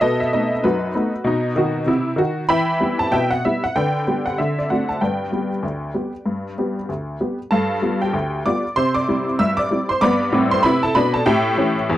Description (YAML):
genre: ragtime piano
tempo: 96 BPM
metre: 2/4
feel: swing 58% on 16ths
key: G major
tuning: A4 = 440 Hz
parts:
  - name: honky-tonk upright piano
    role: solo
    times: 0.0-12.0 s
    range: D2 to E6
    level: -17 LUFS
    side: equal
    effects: none
room: light reverb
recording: dry, close 1970s-style studio recording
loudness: -17 LUFS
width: side -13 dB against mid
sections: 0.0-7.5 A section; 7.5-12.0 B section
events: none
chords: 0.0 B7; 2.5 Em; 3.8 G/D; 4.4 D7; 5.0 G; 7.5 G7; 8.8 C; 10.0 G; 11.3 A7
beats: | 0.01 0.64 | 1.26 1.88 | 2.50 3.13 | 3.75 4.38 | 5.00 5.63 | 6.26 6.89 | 7.51 8.14 | 8.77 9.39 | 10.01 10.64 | 11.26 11.88